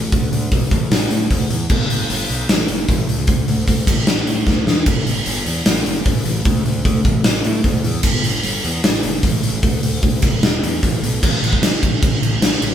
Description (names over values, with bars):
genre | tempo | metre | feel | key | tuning
punk rock | 151 BPM | 4/4 | straight | A major | A4 = 440 Hz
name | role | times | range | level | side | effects
fuzz picked electric bass | bass | 0.0-12.7 s | E1 to A2 | -22 LUFS | equal | overdrive
big rock drum kit | drums | 0.1-12.7 s | crash cymbal, hi-hat, kick drum, snare drum | -16 LUFS | equal | none
room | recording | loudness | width
light reverb | band playing live in one room | -15 LUFS | side -10 dB against mid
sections
0.0-11.2 A section; 11.2-12.7 B section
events
half time 0.0-11.2; drum fill 4.5-4.9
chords
none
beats
| 0.12 0.52 0.91 1.31 | 1.70 2.10 2.49 2.89 | 3.28 3.68 4.08 4.47 | 4.87 5.26 5.66 6.06 | 6.46 6.85 7.25 7.65 | 8.05 8.44 8.84 9.24 | 9.64 10.04 10.43 10.83 | 11.23 11.63 12.03 12.43